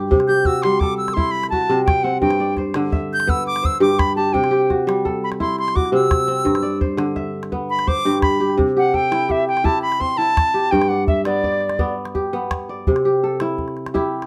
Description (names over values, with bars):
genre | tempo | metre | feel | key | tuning
west african traditional, West African string and xylophone music | 113 BPM (dotted quarters) | 12/8 | straight | C lydian | A4 = 440 Hz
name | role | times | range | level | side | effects
kora | arpeggios | 0.0-14.3 s | G2 to E5 | -21 LUFS | equal | none
calabash | percussion | 0.1-14.3 s | none | -25 LUFS | equal | none
bright reedy silver concert flute | melody | 0.3-11.9 s | D5 to G6 | -22 LUFS | equal | none
room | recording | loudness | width
light reverb | none | -19 LUFS | mono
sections
0.0-8.6 A section; 8.6-14.3 B section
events
flute solo 0.0-8.6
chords
0.1 C; 2.2 G; 4.3 C; 6.5 G; 8.6 C; 10.7 G; 12.9 C